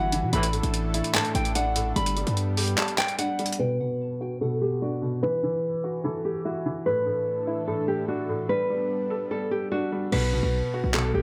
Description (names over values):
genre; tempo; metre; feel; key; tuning
hip hop, trap; 147 BPM; 4/4; half-time; B minor; A4 = 441 Hz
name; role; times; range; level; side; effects
nylon-string guitar; melody; 0.0-11.2 s; F#4 to B5; -30 LUFS; equal; low-pass filter, delay
felt-muted upright piano; accompaniment; 0.0-11.2 s; A2 to A4; -32 LUFS; equal; low-pass filter
warm analog pad; sustained chords; 0.0-3.6, 6.9-10.1 s; E3 to B4; -37 LUFS; equal; lush chorus, low-pass filter
hard-hitting 808-style bass; bass; 0.0-2.8, 10.1-11.2 s; G1 to B2; -29 LUFS; equal; none
boom bap sampler-style drum kit; drums; 0.1-3.6, 10.1-11.0 s; crash cymbal, handclaps, hi-hat; -31 LUFS; equal; none
clear brass ensemble; stabs; 0.3-0.5 s; A2 to E3; -35 LUFS; equal; none
room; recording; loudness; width
light reverb, studio reverb; none; -26 LUFS; mono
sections
0.0-3.6 A section; 3.6-10.1 B section; 10.1-11.2 C section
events
kick muted 2.8-3.6; filter sweep 3.6-10.1; hi-hats muted 10.1-11.2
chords
0.3 Asus4; 2.0 Gadd9; 3.6 Bm; 5.2 Esus2; 6.9 Asus4; 8.5 Gadd9; 10.1 B5